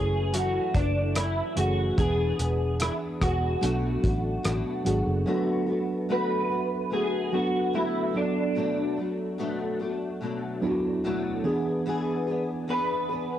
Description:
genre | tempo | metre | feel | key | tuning
indie pop, bedroom pop | 73 BPM | 4/4 | straight | B dorian | A4 = 440 Hz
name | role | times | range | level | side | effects
electric guitar through a small old amp | melody | 0.0-13.4 s | D4 to B4 | -29 LUFS | equal | ensemble chorus, cassette tape, tape echo
mellow tine electric piano | accompaniment | 0.0-13.4 s | E3 to A4 | -30 LUFS | right 3 dB | medium stereo tremolo, cassette tape
picked steel-string acoustic guitar | accompaniment | 0.0-13.4 s | F#2 to G#4 | -31 LUFS | left 3 dB | ensemble chorus, warbly pitch drift, cassette tape
vintage muted fingered electric bass | bass | 0.0-5.2 s | E1 to B1 | -28 LUFS | equal | none
cloth-damped thuddy drum kit | drums | 0.3-5.1 s | hi-hat, kick drum, rim click | -28 LUFS | equal | cassette tape
room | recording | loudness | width
small room ambience | home recording on cassette | -24 LUFS | side -11 dB against mid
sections
0.0-5.3 A section; 5.3-13.4 B section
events
none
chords
0.0 F#m7; 2.0 E7; 3.6 Bm7; 5.3 D6; 8.2 Bm7; 11.4 E7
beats
0.33 1.15 | 1.98 2.80 3.62 4.45 | 5.27 6.09 6.92 7.74 | 8.56 9.39 10.21 11.03 | 11.86 12.68

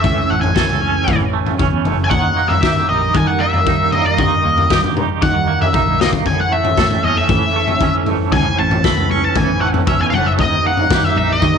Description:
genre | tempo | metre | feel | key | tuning
psychedelic rock | 116 BPM | 4/4 | straight | A lydian | A4 = 439 Hz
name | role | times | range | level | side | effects
octave-fuzz lead guitar | melody | 0.0-11.6 s | D#5 to C#6 | -17 LUFS | left 2 dB | wah, distortion, slapback echo
string machine, cellos | sustained chords | 0.0-11.6 s | D#3 to G#5 | -24 LUFS | right 16 dB | ensemble chorus
twangy electric guitar | riff | 0.0-11.6 s | A2 to A4 | -22 LUFS | right 17 dB | tremolo
fingered electric bass | bass | 0.0-11.6 s | F#1 to D#3 | -22 LUFS | equal | none
metallic inharmonic drone | drone | 0.0-11.6 s | A1 | -27 LUFS | left 1 dB | chorus, built-in reverb
raw garage drum kit | drums | 0.0-11.5 s | kick drum, snare drum, toms | -18 LUFS | left 3 dB | none
congas | percussion | 7.0-11.3 s | none | -30 LUFS | left 16 dB | none
room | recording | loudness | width
light reverb, studio reverb | 1960s-style stereo with parts hard left and right | -13 LUFS | side -6 dB against mid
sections
0.0-11.6 A section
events
lead electric guitar solo 0.0-11.6; drum fill 5.7-6.3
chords
0.0 A; 2.1 D#; 6.3 A; 10.4 D#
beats
| 0.05 0.56 1.08 1.60 | 2.12 2.64 3.15 3.67 | 4.19 4.71 5.22 5.74 | 6.26 6.77 7.29 7.81 | 8.32 8.84 9.36 9.87 | 10.39 10.91 11.43

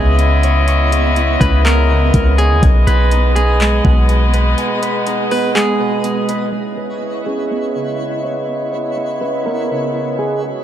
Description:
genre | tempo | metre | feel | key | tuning
hip hop, atmospheric cloud-rap | 123 BPM | 4/4 | half-time | C# minor | A4 = 440 Hz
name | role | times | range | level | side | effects
electric guitar at the edge of break-up | melody | 0.0-10.4 s | G#4 to B4 | -22 LUFS | right 1 dB | low-pass filter, digital delay
muted French horn section | sustained chords | 0.0-10.6 s | B2 to D#5 | -20 LUFS | left 2 dB | sidechain pumping, low-pass filter
Celtic harp | arpeggios | 0.0-10.6 s | B2 to C#6 | -22 LUFS | right 4 dB | low-pass filter, digital delay
warm 808-style bass | bass | 0.0-4.5 s | B1 to D#2 | -13 LUFS | equal | none
twinkling granular texture | texture | 0.0-10.6 s | B3 to D#5 | -26 LUFS | equal | built-in reverb
smooth R&B drum kit | drums | 0.2-6.4 s | handclaps, hi-hat, kick drum | -17 LUFS | equal | none
room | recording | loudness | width
little or no reverb | none | -13 LUFS | side -10 dB against mid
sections
0.0-6.5 A section; 6.5-10.6 B section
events
break 4.6-6.5; filter sweep 6.5-10.6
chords
0.0 C#m7; 2.6 B6; 6.5 C#m7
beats
0.19 | 0.68 1.17 1.65 2.14 | 2.63 3.12 3.60 4.09 | 4.58 5.07 5.55 6.04 | 6.53 7.02 7.51 7.99 | 8.48 8.97 9.46 9.95 | 10.43

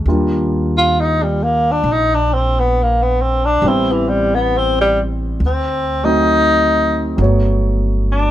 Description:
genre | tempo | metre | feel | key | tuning
jazz ballad | 67 BPM | 4/4 | swing 69% on 8ths | unclear | A4 = 443 Hz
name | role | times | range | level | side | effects
warm grand piano | accompaniment | 0.0-8.3 s | F#3 to C#5 | -20 LUFS | right 1 dB | none
upright bass | bass | 0.0-8.3 s | G1 to Eb2 | -18 LUFS | equal | none
mellow tenor saxophone | melody | 0.8-8.3 s | E3 to F4 | -15 LUFS | left 1 dB | plate reverb
room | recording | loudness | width
light reverb | none | -13 LUFS | side -12 dB against mid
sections
0.1-8.3 A section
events
tenor saxophone solo 0.1-8.3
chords
0.1 Ebmaj9; 3.6 Am7; 5.4 D7b9; 7.2 Gmaj9#11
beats
| 0.05 0.95 1.84 2.73 | 3.62 4.52 5.41 6.30 | 7.19 8.07

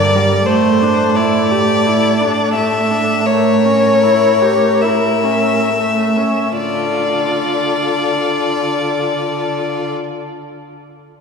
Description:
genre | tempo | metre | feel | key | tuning
classical, slow romantic movement for string quartet | 32-47 BPM | 4/4 | rubato | D minor | A4 = 439 Hz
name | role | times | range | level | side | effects
warm violin | melody | 0.0-9.9 s | A4 to Bb4 | -21 LUFS | left 5 dB | none
clear violin | second line | 0.0-9.9 s | C5 to E5 | -16 LUFS | left 4 dB | none
rich viola | accompaniment | 0.0-9.9 s | D3 to G4 | -20 LUFS | right 2 dB | none
rich cello | bass | 0.0-9.9 s | G2 to D3 | -19 LUFS | right 4 dB | none
room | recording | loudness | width
wet church reverb, RT60 3.7 s | recorded in a church or concert hall | -12 LUFS | side -5 dB against mid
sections
0.0-6.5 A section; 6.5-11.2 B section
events
slowing down 0.0-6.5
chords
0.5 A7sus4; 3.2 A7b9; 6.5 Dm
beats
| 0.46 1.82 3.24 4.79 | 6.54 8.11 9.69

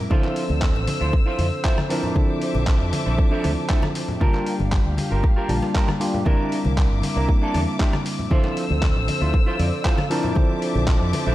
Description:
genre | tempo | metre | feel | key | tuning
nu-disco, nu disco | 117 BPM | 4/4 | straight | unclear | A4 = 440 Hz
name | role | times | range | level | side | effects
tine electric piano | accompaniment | 0.0-11.3 s | F3 to A5 | -26 LUFS | equal | sidechain pumping, analog delay
dark studio string section | sustained chords | 0.0-11.3 s | Bb3 to E6 | -30 LUFS | left 3 dB | sidechain pumping
clean electric guitar | riff | 0.1-11.3 s | D4 to A5 | -29 LUFS | right 2 dB | lush chorus, analog delay
electronic kick drum | drums | 0.1-11.0 s | none | -19 LUFS | equal | none
congas and bongos | percussion | 0.1-11.2 s | none | -30 LUFS | left 1 dB | none
dusty soul sampler-style drum kit | drums | 0.2-11.2 s | handclaps, hi-hat, rim click | -31 LUFS | equal | overdrive
fingered electric bass with an envelope filter | bass | 0.5-11.3 s | G1 to F2 | -23 LUFS | equal | sidechain pumping
room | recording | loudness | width
light reverb, digital ambience | none | -19 LUFS | side -15 dB against mid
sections
0.0-11.3 A section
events
clean electric guitar fill 9.3-10.4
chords
0.1 Dm9; 1.9 Bbmaj9#11; 4.2 Gm7; 6.3 C9; 8.3 Dm9; 10.1 Bbmaj9#11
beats
| 0.11 0.62 1.14 1.65 | 2.16 2.67 3.19 3.70 | 4.21 4.72 5.24 5.75 | 6.26 6.78 7.29 7.80 | 8.31 8.83 9.34 9.85 | 10.37 10.88

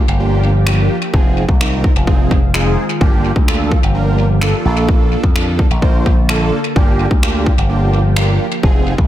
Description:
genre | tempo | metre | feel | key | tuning
dance-pop | 128 BPM | 4/4 | straight | unclear | A4 = 438 Hz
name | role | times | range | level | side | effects
big bright polysynth | accompaniment | 0.0-8.9 s | Bb3 to C5 | -20 LUFS | right 2 dB | wide subtle chorus, sidechain pumping
ethereal airy pad | sustained chords | 0.0-9.1 s | D3 to A4 | -23 LUFS | right 1 dB | ensemble chorus, built-in reverb, sidechain pumping
slap bass with an envelope filter | bass | 0.1-9.1 s | F1 to F2 | -16 LUFS | equal | sidechain pumping
house drum kit | drums | 0.7-9.1 s | finger snaps, kick drum | -14 LUFS | equal | overdrive, tape echo
room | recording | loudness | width
little or no reverb | echo-heavy mix | -11 LUFS | side -13 dB against mid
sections
0.0-9.1 A section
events
none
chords
0.0 Gm7; 1.1 Fm7; 3.0 Gm7; 4.7 Bbmaj7; 6.8 Gm7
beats
0.20 0.67 | 1.14 1.60 2.07 2.54 | 3.01 3.48 3.95 4.42 | 4.88 5.35 5.82 6.29 | 6.76 7.23 7.70 8.17 | 8.63

